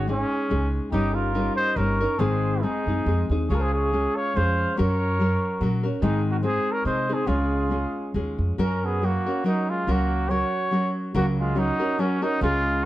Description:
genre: mexican folk, mariachi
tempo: 142 BPM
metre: 3/4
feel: swing 54% on 8ths, rubato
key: Db major, F# major from 8.6 s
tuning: A4 = 441 Hz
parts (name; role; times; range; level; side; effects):
- warm trumpet; melody; 0.0-12.9 s; Db4 to Db5; -27 LUFS; equal; none
- warm trumpet; second line; 0.0-12.9 s; F#3 to F5; -33 LUFS; right 2 dB; none
- nylon-string guitar; accompaniment; 0.0-12.9 s; Ab2 to Bb4; -26 LUFS; left 1 dB; none
- upright bass; bass; 0.0-12.9 s; G1 to C3; -26 LUFS; equal; none
room: moderate spring reverb, RT60 1.2 s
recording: dark, warm production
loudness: -21 LUFS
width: side -15 dB against mid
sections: 0.0-8.6 A section; 8.6-12.9 B section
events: none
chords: 0.0 Absus4; 0.9 Eb7/G; 2.2 Ab; 3.5 Db; 4.8 Gb; 6.0 Ab; 7.3 Db; 8.6 F#

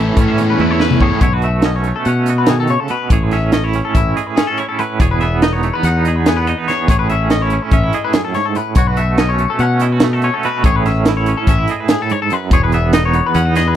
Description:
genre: math rock and midwest emo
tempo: 287 BPM (eighths)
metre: 9/8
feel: straight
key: A lydian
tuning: A4 = 438 Hz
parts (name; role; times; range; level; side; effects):
- twangy electric guitar; accompaniment; 0.0-13.8 s; E2 to B4; -19 LUFS; right 7 dB; tremolo
- twangy electric guitar; arpeggios; 0.0-13.8 s; G#4 to F#5; -20 LUFS; left 8 dB; wide subtle chorus
- cranked stack guitar; riff; 0.0-1.2 s; A2 to A4; -20 LUFS; left 3 dB; overdrive
- growling fingered electric bass; bass; 0.0-13.8 s; E1 to B2; -16 LUFS; equal; overdrive
- crisp fusion drum kit; drums; 0.2-13.7 s; hi-hat, kick drum, snare drum, toms; -16 LUFS; equal; none
room: little or no reverb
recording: none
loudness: -12 LUFS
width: side -11 dB against mid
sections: 0.0-1.2 A section; 1.2-13.8 B section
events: drum fill 0.6-1.2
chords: 0.0 Amaj9; 1.2 B9; 3.1 Amaj9; 5.0 Emaj7; 6.9 Amaj9; 8.8 B7sus2; 10.7 Amaj9; 12.5 Emaj9

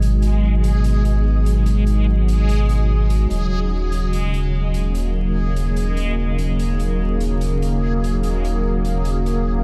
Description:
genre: ambient dub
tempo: 73 BPM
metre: 4/4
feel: straight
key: unclear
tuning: A4 = 439 Hz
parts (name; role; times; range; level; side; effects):
- warm analog pad; sustained chords; 0.0-9.6 s; B2 to F#4; -25 LUFS; equal; chorus, tremolo
- soft dub sub bass; bass; 0.0-9.6 s; D#1 to G#1; -21 LUFS; equal; none
- hi-hat; drums; 0.0-9.4 s; none; -42 LUFS; equal; none
- backwards swelling texture; texture; 0.0-9.6 s; G#3 to G#4; -33 LUFS; equal; built-in reverb
room: small room reverb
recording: vinyl crackle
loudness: -19 LUFS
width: mono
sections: 0.0-9.6 A section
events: filter sweep on analog synth pad 0.0-9.6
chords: 0.0 G#m7; 3.3 D#m7

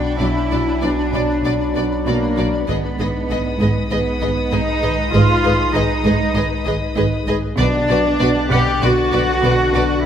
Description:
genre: cinematic, suspense film score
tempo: 98 BPM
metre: 4/4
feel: straight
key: unclear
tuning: A4 = 441 Hz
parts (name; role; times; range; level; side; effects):
- dark French horn section; sustained chords; 0.0-10.1 s; D3 to D#4; -25 LUFS; left 6 dB; none
- pulsing gated texture; sustained chords; 0.0-10.1 s; D4 to B5; -28 LUFS; left 1 dB; chorus, built-in reverb
- rich studio cello section; riff; 0.0-9.9 s; G#2 to B3; -24 LUFS; right 2 dB; none
- dark chamber cello section; bass; 0.0-10.1 s; A#3 to G4; -20 LUFS; right 2 dB; none
- punchy sub bass; drone; 0.0-10.1 s; B1; -26 LUFS; left 1 dB; none
- warm studio violin section; texture; 0.0-10.1 s; F#5 to A6; -29 LUFS; left 3 dB; none
- warm studio violin section; melody; 0.2-9.8 s; D5 to D#5; -30 LUFS; left 3 dB; none
- dark studio violin section; second line; 0.2-9.8 s; B4 to D5; -28 LUFS; left 1 dB; none
- warm studio viola section; accompaniment; 0.2-9.8 s; F#3 to F#5; -27 LUFS; right 1 dB; none
- warm studio double bass section; bass; 0.2-9.8 s; G#1 to B1; -23 LUFS; right 2 dB; none
- timpani; percussion; 7.6-8.5 s; B2; -26 LUFS; left 2 dB; none
room: moderate scoring stage reverb, RT60 1.6 s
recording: none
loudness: -15 LUFS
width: side -9 dB against mid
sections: 0.0-10.1 A section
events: none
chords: 0.0 Bm; 2.7 G#m; 7.6 Bm

